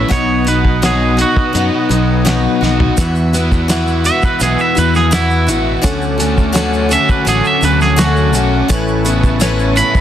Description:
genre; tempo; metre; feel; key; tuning
folk rock and heartland rock; 84 BPM; 4/4; straight; unclear; A4 = 440 Hz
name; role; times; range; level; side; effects
twangy electric guitar; second line; 0.0-10.0 s; E4 to B5; -16 LUFS; right 3 dB; none
picked steel-string acoustic guitar; accompaniment; 0.0-10.0 s; B2 to B4; -18 LUFS; left 4 dB; none
musette accordion; sustained chords; 0.0-10.0 s; C#4 to E6; -25 LUFS; right 4 dB; none
crunchy overdriven guitar; riff; 0.0-10.0 s; E2 to F#4; -18 LUFS; equal; none
fingered electric bass; bass; 0.0-9.8 s; A1 to F#2; -16 LUFS; equal; none
cloth-damped thuddy drum kit; drums; 0.1-10.0 s; hi-hat, kick drum, snare drum, toms; -17 LUFS; equal; none
tube shaker; percussion; 3.0-10.0 s; none; -28 LUFS; right 6 dB; none
room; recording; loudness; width
light reverb, small room ambience; dense, heavily limited modern master; -11 LUFS; side -10 dB against mid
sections
0.0-10.0 A section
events
clean electric guitar solo 0.0-10.0; drum fill 2.6-3.0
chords
0.1 B; 3.0 Esus2; 5.8 Dmaj7; 8.7 Aadd9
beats
| 0.12 0.83 1.55 2.26 | 2.98 3.70 4.41 5.13 | 5.84 6.56 7.27 7.99 | 8.70 9.41

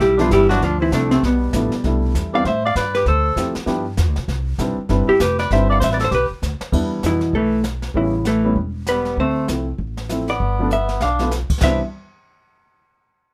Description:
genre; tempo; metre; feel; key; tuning
jazz, small-group swing and bop; 196 BPM; 4/4; swing 61% on 8ths; C major; A4 = 439 Hz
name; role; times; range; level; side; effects
vintage hollow-body jazz guitar; melody; 0.0-11.8 s; B2 to F5; -21 LUFS; equal; none
growling tenor saxophone; second line; 0.0-11.8 s; B2 to D5; -26 LUFS; equal; none
upright bass; bass; 0.0-11.8 s; E1 to A2; -24 LUFS; equal; none
jazz brush drum kit; drums; 0.0-11.7 s; brushed snare drum, china cymbal, crash cymbal, hi-hat, kick drum, snare drum; -28 LUFS; equal; none
warm baby grand piano; accompaniment; 0.2-11.8 s; E3 to B4; -25 LUFS; equal; none
room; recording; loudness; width
light reverb; none; -19 LUFS; mono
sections
0.0-6.7 A section; 6.7-11.6 B section; 11.6-12.8 C section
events
drum fill 6.4-6.7, 10.7-11.3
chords
0.0 Em7; 0.6 Dm7; 1.2 G13; 1.8 C69; 2.4 G69; 3.1 Dm11; 3.7 G6; 4.3 Cmaj7; 6.7 Em7; 8.0 A9; 9.2 Dm9; 10.4 G7; 11.6 Cmaj7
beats
0.00 0.31 | 0.61 0.92 1.23 1.53 | 1.84 2.14 2.45 2.75 | 3.06 3.37 3.67 3.98 | 4.28 4.59 4.89 5.20 | 5.50 5.81 6.12 6.42 | 6.73 7.03 7.34 7.64 | 7.95 8.26 8.56 8.87 | 9.18 9.48 9.79 10.09 | 10.40 10.70 11.01 11.31 | 11.62

